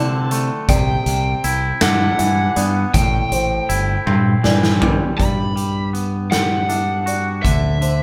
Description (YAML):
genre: post-rock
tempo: 53 BPM (dotted quarters)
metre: 6/8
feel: straight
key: G major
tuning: A4 = 440 Hz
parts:
  - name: cranked stack guitar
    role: melody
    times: 0.0-8.0 s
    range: E5 to B5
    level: -25 LUFS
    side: equal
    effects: overdrive, harmonic tremolo
  - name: felt-muted upright piano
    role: arpeggios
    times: 0.0-8.0 s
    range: C5 to E5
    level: -31 LUFS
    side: equal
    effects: none
  - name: twangy electric guitar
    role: arpeggios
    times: 0.0-8.0 s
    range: A2 to F#4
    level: -26 LUFS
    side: equal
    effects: none
  - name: growling fingered electric bass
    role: bass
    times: 0.0-8.0 s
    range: G1 to C3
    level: -22 LUFS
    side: equal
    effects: overdrive
  - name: huge arena drum kit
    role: drums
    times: 0.3-8.0 s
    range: hi-hat, kick drum, snare drum, toms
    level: -23 LUFS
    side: equal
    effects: none
room: moderate studio reverb, RT60 0.7 s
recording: band playing live in one room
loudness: -18 LUFS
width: mono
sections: 0.0-5.2 A section; 5.2-8.0 B section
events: drum fill 4.1-5.2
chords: 0.0 D7; 0.7 Cmaj9; 2.9 Am7; 5.2 Gmaj7; 7.4 D7(no3)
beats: | 0.69 1.82 | 2.94 4.07 | 5.19 6.32 | 7.44